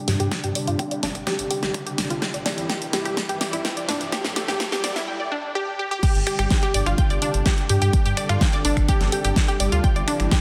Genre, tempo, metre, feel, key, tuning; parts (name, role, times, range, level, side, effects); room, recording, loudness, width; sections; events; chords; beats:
progressive house; 126 BPM; 4/4; straight; A4 = 441 Hz
warm analog pad; sustained chords; 0.0-10.4 s; C3 to A4; -33 LUFS; equal; chorus, sidechain pumping
riser; sound effects; 0.9-5.1 s; -40 LUFS; equal
unison pluck; arpeggios; 0.1-10.4 s; D4 to G6; -28 LUFS; equal; sidechain pumping, dub echo
dark detuned saw bass; bass; 0.1-10.3 s; G1 to G2; -26 LUFS; equal; sidechain pumping
big-room dance drum kit; drums; 0.1-10.4 s; crash cymbal, finger snaps, hi-hat, snare drum; -29 LUFS; equal; soft clipping on snare, sidechain pumping on hats, sidechain pumping on cymbals
electronic kick drum; drums; 0.3-10.4 s; -23 LUFS; equal; high-pass filter on kick
moderate lush hall reverb, RT60 2.0 s; dense, heavily limited modern master, high-pass filter; -22 LUFS; mono
0.0-6.0 A section; 6.0-10.4 B section
build-up 0.0-6.0; drum fill 0.0-5.1; filter sweep on synth pluck 0.0-6.0; drop 6.0-10.4
0.0 Gsus4; 2.2 C/G; 6.0 Gsus4; 9.8 C/G
| 0.32 0.79 1.27 1.74 | 2.22 2.70 3.17 3.65 | 4.12 4.60 5.08 5.55 | 6.03 6.51 6.98 7.46 | 7.93 8.41 8.89 9.36 | 9.84 10.31